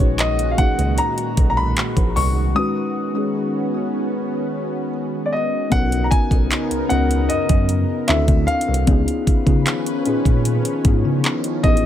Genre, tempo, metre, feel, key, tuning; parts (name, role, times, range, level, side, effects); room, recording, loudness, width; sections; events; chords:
contemporary R&B; 76 BPM; 4/4; straight; A4 = 440 Hz
warm concert grand piano; melody; 0.0-11.9 s; Db5 to Eb6; -24 LUFS; left 1 dB; digital delay
muted felt-like synth keys; accompaniment; 0.0-11.9 s; A#2 to B4; -23 LUFS; left 4 dB; chorus
lush unison pad; sustained chords; 0.0-11.9 s; A#2 to Cb5; -26 LUFS; right 1 dB; chorus
bell-like tine electric piano; bass; 0.0-11.9 s; A1 to Db3; -21 LUFS; equal; fast stereo tremolo
smooth R&B drum kit; drums; 0.2-11.9 s; handclaps, hi-hat, kick drum; -18 LUFS; equal
little or no reverb; -16 LUFS; side -11 dB against mid
0.0-5.7 A section; 5.7-11.9 B section
break 2.6-5.7
0.0 Bmaj7; 2.6 Db9sus4; 5.7 Bmaj9; 8.1 D9; 8.9 Db9